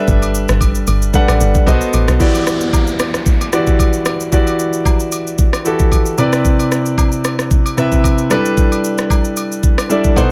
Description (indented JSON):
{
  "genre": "amapiano",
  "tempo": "113 BPM",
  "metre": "4/4",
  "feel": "swing 55% on 16ths",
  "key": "E minor",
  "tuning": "A4 = 440 Hz",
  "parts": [
    { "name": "warm concert grand piano", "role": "accompaniment", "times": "0.0-10.3 s", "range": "B2 to F#5", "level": "-18 LUFS", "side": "equal", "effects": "none" },
    { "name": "deep log drum bass", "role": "bass", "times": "0.1-2.2 s", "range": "G1 to B1", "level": "-17 LUFS", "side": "equal", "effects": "none" },
    { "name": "smooth R&B drum kit", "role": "drums", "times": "0.1-10.3 s", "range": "kick drum, rim click, shaker", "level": "-17 LUFS", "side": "equal", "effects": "none" },
    { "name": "agogo bells and woodblock", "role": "percussion", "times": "0.2-10.3 s", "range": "none", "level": "-30 LUFS", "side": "equal", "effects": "none" },
    { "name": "downlifter", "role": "sound effects", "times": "2.2-6.4 s", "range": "none", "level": "-28 LUFS", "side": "equal", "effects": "none" }
  ],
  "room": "little or no reverb",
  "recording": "none",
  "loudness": "-14 LUFS",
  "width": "mono",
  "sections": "0.0-2.2 A section; 2.2-10.3 B section",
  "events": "drop 0.0-2.2; grand piano fill 9.6-10.3",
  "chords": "0.0 G69; 1.7 B7b9; 2.2 Em9; 6.2 Cmaj7; 8.3 G69"
}